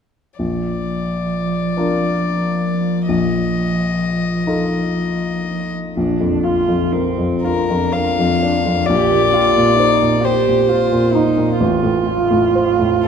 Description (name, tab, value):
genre	classical, slow romantic movement for piano trio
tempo	39-46 BPM (dotted quarters)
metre	6/8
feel	rubato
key	Bb major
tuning	A4 = 440 Hz
part	rich violin	melody	0.4-13.1 s	A4 to F5	-20 LUFS	left 6 dB	none
part	dark cello	second line	0.4-13.1 s	F3 to G4	-19 LUFS	right 4 dB	none
part	clear baby grand piano	accompaniment	0.4-13.1 s	A1 to C5	-18 LUFS	left 1 dB	none
room	wet concert hall reverb, RT60 1.9 s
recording	dark, warm production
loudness	-15 LUFS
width	side -7 dB against mid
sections	0.4-6.0 A section; 6.0-13.1 B section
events	none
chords	0.4 Bb; 3.1 F7/Bb; 6.0 Bb; 8.9 Cm7/Bb; 11.6 F/A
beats	| 0.39 1.76 | 3.09 4.47 | 5.96 7.43 | 8.87 10.23 | 11.59 13.05